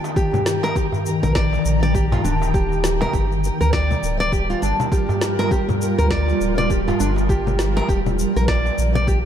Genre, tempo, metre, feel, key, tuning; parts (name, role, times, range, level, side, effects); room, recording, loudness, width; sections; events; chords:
organic downtempo; 101 BPM; 4/4; swing 59% on 16ths; G minor; A4 = 440 Hz
granular cloud pad; sustained chords; 0.0-9.3 s; Eb3 to Bb5; -24 LUFS; equal; built-in reverb, sidechain pumping
electronic shaker, congas and snare drum; drums; 0.0-9.2 s; -27 LUFS; left 2 dB
darbuka; percussion; 0.0-9.1 s; -29 LUFS; right 1 dB
nylon-string guitar; arpeggios; 0.2-9.2 s; D4 to D5; -23 LUFS; equal; digital delay
electronic kick drum; drums; 0.2-9.2 s; -22 LUFS; equal
warm sub bass; bass; 1.2-9.3 s; D1 to D2; -21 LUFS; equal; sidechain pumping
light reverb; dark, warm production; -17 LUFS; side -9 dB against mid
0.0-9.3 A section
0.0 Eb; 3.1 Gm7; 7.9 Eb